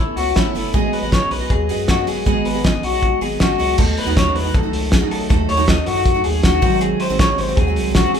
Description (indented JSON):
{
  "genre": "jangly indie pop",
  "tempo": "158 BPM",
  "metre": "4/4",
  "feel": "straight",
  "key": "unclear",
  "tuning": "A4 = 440 Hz",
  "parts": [
    { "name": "picked steel-string acoustic guitar", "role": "accompaniment", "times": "0.0-8.2 s", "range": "G#2 to D#5", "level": "-24 LUFS", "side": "right 7 dB", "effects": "none" },
    { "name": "phased analog pad", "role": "sustained chords", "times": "0.0-8.2 s", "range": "B#2 to C#4", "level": "-28 LUFS", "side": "equal", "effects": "phaser, chorus" },
    { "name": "electric guitar through a small old amp", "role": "arpeggios", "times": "0.0-8.2 s", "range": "E4 to D#5", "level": "-20 LUFS", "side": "left 4 dB", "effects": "harmonic tremolo" },
    { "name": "round analog bass", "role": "bass", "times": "0.0-8.1 s", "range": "F#1 to F#2", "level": "-24 LUFS", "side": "equal", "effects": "none" },
    { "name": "cloth-damped thuddy drum kit", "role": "drums", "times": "0.2-8.2 s", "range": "crash cymbal, hi-hat, kick drum, snare drum", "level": "-18 LUFS", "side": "equal", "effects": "none" }
  ],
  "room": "moderate large studio reverb, RT60 0.9 s",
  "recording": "band playing live in one room",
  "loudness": "-15 LUFS",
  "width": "side -8 dB against mid",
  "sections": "0.0-3.8 A section; 3.8-8.2 B section",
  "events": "none",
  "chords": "0.0 Aadd9; 0.7 G#m7; 3.8 D#dim; 6.6 G#7",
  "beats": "0.37 | 0.75 1.13 1.51 1.89 | 2.27 2.65 3.03 3.40 | 3.79 4.16 4.54 4.92 | 5.30 5.68 6.06 6.44 | 6.82 7.20 7.58 7.96"
}